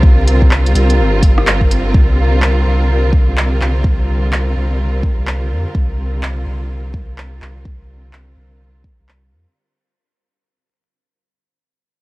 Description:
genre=future garage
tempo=126 BPM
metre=4/4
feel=swing 62% on 16ths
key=unclear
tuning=A4 = 440 Hz
part: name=warm symphonic string section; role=sustained chords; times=0.0-9.6 s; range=D3 to Bb4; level=-20 LUFS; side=equal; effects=vintage 12-bit sampler grit, sidechain pumping
part: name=warm sub bass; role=bass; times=0.0-9.5 s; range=G1 to F2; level=-15 LUFS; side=equal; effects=sidechain pumping
part: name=electronic kick drum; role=drums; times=0.0-9.0 s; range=none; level=-13 LUFS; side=equal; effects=studio reverb
part: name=organic electronic drum kit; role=drums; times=0.3-9.2 s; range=handclaps, hi-hat, rim click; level=-20 LUFS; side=equal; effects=studio reverb
room=little or no reverb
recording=vinyl crackle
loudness=-12 LUFS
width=side -20 dB against mid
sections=0.0-1.9 A section; 1.9-9.6 B section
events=fade-out 1.9-9.6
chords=0.0 Ebmaj13 (rootless); 1.9 C5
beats=| 0.04 0.51 0.99 1.47 | 1.94 2.42 2.89 3.37 | 3.85 4.32 4.80 5.28 | 5.75 6.23 6.70 7.18 | 7.66 8.13 8.61 9.09

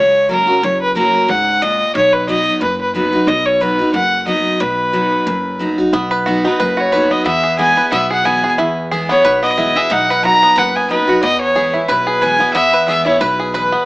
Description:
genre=bluegrass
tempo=181 BPM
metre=4/4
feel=swing 55% on 8ths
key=B major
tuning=A4 = 440 Hz
part: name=clear fiddle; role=melody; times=0.0-13.9 s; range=A#4 to A#5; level=-14 LUFS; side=equal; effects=plate reverb
part: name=picked steel-string acoustic guitar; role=accompaniment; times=0.0-13.9 s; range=E2 to F#4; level=-20 LUFS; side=equal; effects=none
part: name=upright bass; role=bass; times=0.0-13.7 s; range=F#1 to E2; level=-26 LUFS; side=equal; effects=none
part: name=bluegrass banjo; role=melody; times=5.9-13.9 s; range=B3 to B4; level=-17 LUFS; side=right 1 dB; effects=plate reverb
room=moderate studio reverb, RT60 0.5 s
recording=AM radio sound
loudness=-12 LUFS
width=side -20 dB against mid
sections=0.0-13.9 A section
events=none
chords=0.0 F#; 2.0 B; 7.3 E; 9.9 B; 11.2 E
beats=0.30 | 0.63 0.96 1.29 1.62 | 1.96 2.29 2.62 2.95 | 3.28 3.61 3.94 4.28 | 4.61 4.94 5.27 5.60 | 5.93 6.26 6.60 6.93 | 7.26 7.59 7.92 8.25 | 8.58 8.91 9.24 9.58 | 9.91 10.24 10.57 10.90 | 11.23 11.56 11.89 12.22 | 12.55 12.88 13.21 13.55

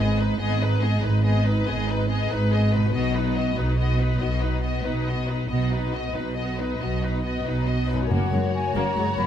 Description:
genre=cinematic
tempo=94 BPM (dotted quarters)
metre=12/8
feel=straight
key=unclear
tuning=A4 = 445 Hz
part: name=rich symphonic violin section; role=melody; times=0.0-9.3 s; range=B4 to D#5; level=-31 LUFS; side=left 5 dB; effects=none
part: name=rich symphonic violin section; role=second line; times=0.0-9.3 s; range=D#4 to B4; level=-34 LUFS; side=left 1 dB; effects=none
part: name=rich symphonic viola section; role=accompaniment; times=0.0-9.3 s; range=G#3 to D#4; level=-32 LUFS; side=right 1 dB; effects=none
part: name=concert harp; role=arpeggios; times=0.0-9.3 s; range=F#2 to B4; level=-34 LUFS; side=left 10 dB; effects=none
part: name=rich symphonic cello section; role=bass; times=0.0-9.3 s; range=F#2 to B2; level=-26 LUFS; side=right 1 dB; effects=none
part: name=rich symphonic double bass section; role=bass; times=0.0-9.3 s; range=F#1 to B1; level=-26 LUFS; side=right 1 dB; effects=none
part: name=concert flute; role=second line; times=8.1-9.3 s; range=F#5 to B5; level=-28 LUFS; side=equal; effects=none
part: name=timpani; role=percussion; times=8.1-8.7 s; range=F#2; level=-28 LUFS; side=equal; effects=none
room=light reverb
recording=none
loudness=-21 LUFS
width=side -10 dB against mid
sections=0.0-8.1 A section; 8.1-9.3 B section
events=build-up 0.0-8.1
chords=0.0 G#m; 2.9 B; 8.1 F#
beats=| 0.40 1.03 1.67 2.30 | 2.94 3.57 4.21 4.85 | 5.50 6.15 6.81 7.46 | 8.11 8.75

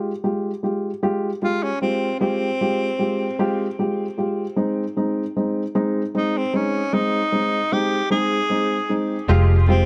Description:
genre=six-eight pop ballad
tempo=51 BPM (dotted quarters)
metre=6/8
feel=straight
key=unclear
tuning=A4 = 440 Hz
part: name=dark baby grand piano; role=accompaniment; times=0.0-9.9 s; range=Ab3 to G4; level=-24 LUFS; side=equal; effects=none
part: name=breathy tenor saxophone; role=melody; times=1.4-9.9 s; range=C4 to Ab4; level=-26 LUFS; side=equal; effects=tape echo
part: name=direct-recorded clean electric guitar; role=arpeggios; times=9.3-9.9 s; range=F2 to G4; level=-29 LUFS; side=equal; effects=ensemble chorus, tape echo
part: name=vintage muted fingered electric bass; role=bass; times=9.3-9.9 s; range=F1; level=-16 LUFS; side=equal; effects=none
room=light reverb, small room ambience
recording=dark, warm production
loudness=-22 LUFS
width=mono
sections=0.0-9.3 A section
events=none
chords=0.0 Fmadd9; 4.6 Ab; 9.3 Fmadd9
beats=1.03 | 2.21 3.39 | 4.57 5.75 | 6.93 8.11 | 9.28

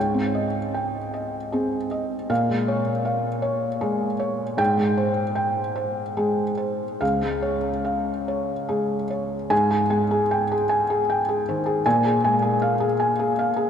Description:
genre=neoclassical minimalist piano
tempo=47-53 BPM (dotted quarters)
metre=6/8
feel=rubato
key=Ab major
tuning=A4 = 441 Hz
part: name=felt-muted upright piano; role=solo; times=0.0-13.7 s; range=Db2 to Ab5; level=-21 LUFS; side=equal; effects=none
room=wet cathedral reverb, RT60 5.1 s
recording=recorded in a church or concert hall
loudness=-21 LUFS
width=side -8 dB against mid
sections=0.0-9.5 A section; 9.5-13.7 B section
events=none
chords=0.0 Abmaj7; 2.3 Bbm7; 4.6 Abmaj7; 7.0 Db; 9.5 Abmaj7; 11.9 Bb7(no3)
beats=1.13 | 2.30 3.44 | 4.59 5.77 | 7.02 8.28 | 9.51 10.70 | 11.85 13.00

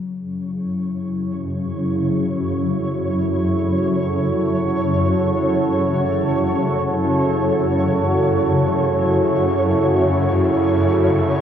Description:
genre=dark ambient drone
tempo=free time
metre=none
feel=none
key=F# minor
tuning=A4 = 439 Hz
part: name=deep dark ambient pad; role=sustained chords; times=0.9-11.4 s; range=E4 to A4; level=-20 LUFS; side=right 2 dB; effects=chorus, built-in reverb
part: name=quartz singing bowl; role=arpeggios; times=0.0-6.4 s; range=F#3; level=-28 LUFS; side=left 4 dB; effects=tape echo
part: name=swarming drone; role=drone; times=0.3-11.4 s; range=F#2 to C#3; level=-21 LUFS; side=left 1 dB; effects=built-in reverb
part: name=flickering grainy texture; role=texture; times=1.6-11.4 s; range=C#5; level=-25 LUFS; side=equal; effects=built-in reverb
room=wet huge ambient reverb, RT60 7.4 s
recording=worn, warbling old tape, cassette tape, warbly pitch drift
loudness=-17 LUFS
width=side -8 dB against mid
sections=0.0-11.4 A section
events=filter sweep on synth drone 0.0-11.4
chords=0.0 F#m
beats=free time

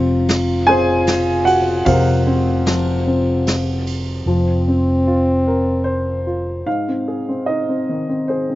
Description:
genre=acoustic folk-pop ballad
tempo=75 BPM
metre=3/4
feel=straight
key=unclear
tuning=A4 = 441 Hz
part: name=dark upright piano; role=melody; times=0.0-8.6 s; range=Ab2 to Ab5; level=-18 LUFS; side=left 1 dB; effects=none
part: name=mellow French horn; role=second line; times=0.0-6.6 s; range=C4 to F4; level=-21 LUFS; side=equal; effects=slapback echo
part: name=fingered electric bass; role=bass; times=0.0-6.6 s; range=F1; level=-20 LUFS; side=right 1 dB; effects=none
part: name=soft brush drum kit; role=drums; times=0.3-4.1 s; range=kick drum, ride cymbal, snare drum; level=-25 LUFS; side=right 1 dB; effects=none
room=little or no reverb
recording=recorded outdoors, with no room sound, nothing above 7.6 kHz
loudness=-15 LUFS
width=side -16 dB against mid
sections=0.0-4.3 A section; 4.3-6.7 B section; 6.7-8.6 C section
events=none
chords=0.0 Fsus4; 6.7 Ab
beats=0.27 1.06 | 1.86 2.66 3.46 | 4.26 5.06 5.86 | 6.66 7.47 8.28

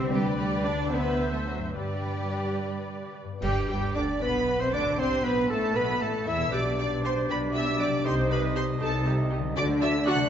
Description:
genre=classical, dramatic, fast romantic movement for symphony orchestra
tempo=70-80 BPM (dotted quarters)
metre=6/8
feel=rubato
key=G major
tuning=A4 = 438 Hz
part: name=rich symphonic violin section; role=melody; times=0.0-10.3 s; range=F#4 to F#6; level=-35 LUFS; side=left 1 dB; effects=none
part: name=warm symphonic violin section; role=second line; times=0.0-10.2 s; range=F#4 to F#5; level=-36 LUFS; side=equal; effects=none
part: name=warm French horn section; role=sustained chords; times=0.0-10.3 s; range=F#3 to E4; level=-32 LUFS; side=left 2 dB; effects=none
part: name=concert harp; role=arpeggios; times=0.0-10.3 s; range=G2 to E5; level=-33 LUFS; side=left 5 dB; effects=none
part: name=rich symphonic cello section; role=bass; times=0.0-10.2 s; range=G2 to D4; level=-33 LUFS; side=right 2 dB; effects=none
part: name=clear symphonic viola section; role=accompaniment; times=0.1-10.2 s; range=G3 to E5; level=-34 LUFS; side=right 1 dB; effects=none
part: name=clear studio double bass section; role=bass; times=0.1-10.2 s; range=G1 to G2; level=-33 LUFS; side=right 3 dB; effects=none
part: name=clear oboe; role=second line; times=3.4-10.2 s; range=G4 to E5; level=-36 LUFS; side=right 2 dB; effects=none
part: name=dark clarinet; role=second line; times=3.4-10.2 s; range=F#4 to E5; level=-34 LUFS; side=equal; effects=none
part: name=flute section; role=second line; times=3.4-10.3 s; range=G4 to F#5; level=-34 LUFS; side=right 1 dB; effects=none
part: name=clash cymbals and concert bass drum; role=percussion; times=3.4-4.4 s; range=none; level=-38 LUFS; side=right 1 dB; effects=none
room=wet scoring stage reverb, RT60 1.6 s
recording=nothing above 7.8 kHz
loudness=-24 LUFS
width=side -9 dB against mid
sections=0.0-3.4 A section; 3.4-10.3 B section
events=band accent 3.4-4.0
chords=0.1 G/D; 0.9 D9; 1.8 G; 5.0 D7; 6.5 G/B; 8.1 Am7b5/C; 9.6 D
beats=| 0.12 0.92 | 1.75 2.60 | 3.43 4.22 | 4.99 5.76 | 6.53 7.30 | 8.05 8.81 | 9.57

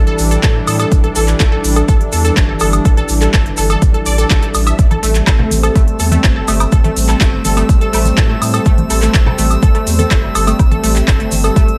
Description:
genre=progressive house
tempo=124 BPM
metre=4/4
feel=straight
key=A minor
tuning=A4 = 438 Hz
part: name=lush unison pad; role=sustained chords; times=0.0-11.8 s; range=E3 to D4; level=-23 LUFS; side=equal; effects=chorus, sidechain pumping
part: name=unison pluck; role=arpeggios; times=0.0-11.6 s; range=A3 to E6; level=-22 LUFS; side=equal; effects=sidechain pumping, dub echo
part: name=saturated sub bass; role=bass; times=0.0-11.7 s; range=G1 to A2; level=-18 LUFS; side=equal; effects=sidechain pumping
part: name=big-room dance drum kit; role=drums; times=0.1-11.8 s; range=handclaps, hi-hat, woodblock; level=-22 LUFS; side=equal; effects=none
part: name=tube shaker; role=percussion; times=0.2-11.7 s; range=none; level=-29 LUFS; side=equal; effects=none
part: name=electronic kick drum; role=drums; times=0.4-11.7 s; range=none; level=-14 LUFS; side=equal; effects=overdrive
part: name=drifting glass-harmonics texture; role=texture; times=5.9-11.8 s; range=E6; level=-29 LUFS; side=equal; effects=chorus, built-in reverb, sidechain pumping
part: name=woodblock and congas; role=percussion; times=4.9-11.7 s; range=none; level=-25 LUFS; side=equal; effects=sidechain pumping on perc
room=digital ambience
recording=none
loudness=-13 LUFS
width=mono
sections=0.0-11.8 A section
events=none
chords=0.0 Em7; 4.8 Am7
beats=0.43 | 0.92 1.40 1.89 2.37 | 2.85 3.34 3.82 4.30 | 4.79 5.27 5.76 6.24 | 6.72 7.21 7.69 8.18 | 8.66 9.14 9.63 10.11 | 10.60 11.08 11.56

